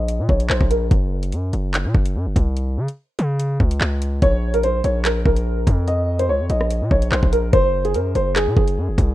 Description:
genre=hip hop, drill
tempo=145 BPM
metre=4/4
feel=half-time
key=Bb minor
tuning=A4 = 440 Hz
part: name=dark baby grand piano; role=melody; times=0.0-0.9, 4.2-9.1 s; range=Ab4 to Eb5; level=-21 LUFS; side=equal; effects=low-pass filter, ping-pong delay
part: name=distorted 808-style bass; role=bass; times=0.0-9.1 s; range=Gb1 to Db3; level=-20 LUFS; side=equal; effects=distortion
part: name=drill drum kit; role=drums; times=0.1-9.1 s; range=handclaps, hi-hat, kick drum, rim click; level=-18 LUFS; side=equal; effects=overdrive, vintage 12-bit sampler grit
room=digital ambience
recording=rough home demo mix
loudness=-17 LUFS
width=side -15 dB against mid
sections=0.0-9.1 A section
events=filter sweep on grand piano 0.0-4.2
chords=0.0 N.C.; 4.2 Bbm; 7.5 Gbsus2

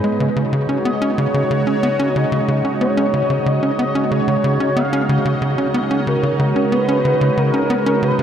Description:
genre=ambient, sequencer-driven space music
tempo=92 BPM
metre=4/4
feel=straight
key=unclear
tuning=A4 = 445 Hz
part: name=sweeping resonant pad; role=sustained chords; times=0.0-8.2 s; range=C#3 to D#5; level=-20 LUFS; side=right 1 dB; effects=chorus, shimmer reverb
part: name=tight sequencer bass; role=riff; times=0.0-8.2 s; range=C#3 to C#4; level=-19 LUFS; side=equal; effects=tape echo
part: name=bubbling stepped-filter texture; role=texture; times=0.0-8.2 s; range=D#4 to D#5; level=-29 LUFS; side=right 4 dB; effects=chorus, built-in reverb, shimmer reverb
part: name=expressive synth lead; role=melody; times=0.9-8.2 s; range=A#4 to E#5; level=-21 LUFS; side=left 1 dB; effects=ensemble chorus, shimmer reverb, tape echo
room=wet huge ambient reverb, RT60 8.3 s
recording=in a vast, echoing space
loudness=-15 LUFS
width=side -9 dB against mid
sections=0.0-8.2 A section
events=none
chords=0.2 C#sus4

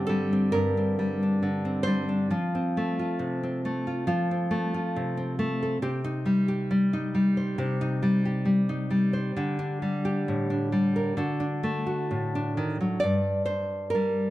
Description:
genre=folk, solo fingerstyle acoustic guitar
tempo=68 BPM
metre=4/4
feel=rubato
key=unclear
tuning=A4 = 440 Hz
part: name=nylon-string guitar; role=solo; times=0.0-14.3 s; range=G2 to D5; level=-24 LUFS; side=equal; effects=none
room=moderate recital hall reverb, RT60 1.5 s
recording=none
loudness=-24 LUFS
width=side -16 dB against mid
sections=0.0-13.0 A section; 13.0-14.3 B section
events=none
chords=0.0 G5; 2.3 F; 5.8 Cm; 9.4 Dsus4; 11.2 D; 13.0 Gm

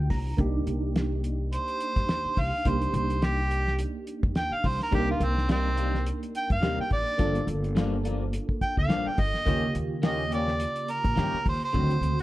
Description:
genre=straight-eighth soul blues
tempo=106 BPM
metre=4/4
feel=swing 56% on 16ths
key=unclear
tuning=A4 = 439 Hz
part: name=bell-like tine electric piano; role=accompaniment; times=0.0-12.2 s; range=Db3 to Bb5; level=-33 LUFS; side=right 3 dB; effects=phaser
part: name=upright bass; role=bass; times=0.0-12.2 s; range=G1 to G2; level=-29 LUFS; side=equal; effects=none
part: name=cloth-damped thuddy drum kit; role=drums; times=0.1-12.2 s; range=hi-hat, kick drum, snare drum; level=-29 LUFS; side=equal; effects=none
part: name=mellow harmonica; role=melody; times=1.5-12.2 s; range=C4 to G5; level=-29 LUFS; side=right 1 dB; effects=overdrive
part: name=electric guitar at the edge of break-up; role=stabs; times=4.9-11.9 s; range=G2 to G4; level=-33 LUFS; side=left 4 dB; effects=ensemble chorus
room=light reverb, studio reverb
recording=none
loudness=-24 LUFS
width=side -16 dB against mid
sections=0.0-12.2 A section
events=tine electric piano fill 0.0-0.4; harmonica solo 0.0-12.2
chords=0.4 Cm7; 7.2 Gm7; 9.5 Eb7

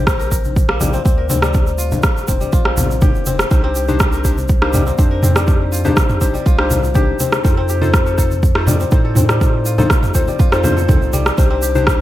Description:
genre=afro house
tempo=122 BPM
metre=4/4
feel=straight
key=C dorian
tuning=A4 = 443 Hz
part: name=kora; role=arpeggios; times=0.0-12.0 s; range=G3 to C5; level=-22 LUFS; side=left 4 dB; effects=sidechain pumping, digital delay
part: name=warm sub bass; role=bass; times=0.0-12.0 s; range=F1 to A2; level=-20 LUFS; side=right 1 dB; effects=sidechain pumping
part: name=deep house drum kit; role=drums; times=0.1-12.0 s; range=rim click, toms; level=-19 LUFS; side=right 1 dB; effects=gated reverb
part: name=electronic kick drum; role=drums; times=0.1-12.0 s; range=none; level=-14 LUFS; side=right 1 dB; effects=none
part: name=tube shaker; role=percussion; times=0.1-12.0 s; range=none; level=-28 LUFS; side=right 4 dB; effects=none
part: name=congas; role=percussion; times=0.5-11.8 s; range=none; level=-21 LUFS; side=left 2 dB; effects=none
part: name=warm analog keys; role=stabs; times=3.5-12.0 s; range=D4 to C5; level=-22 LUFS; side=left 1 dB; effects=chorus, sidechain pumping, digital delay
room=light reverb, small room ambience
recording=bright 1980s-style digital production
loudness=-12 LUFS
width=side -14 dB against mid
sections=0.0-12.0 A section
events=none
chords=0.0 Bbadd9; 3.5 Cmadd9; 7.4 F7; 11.4 Cmadd9

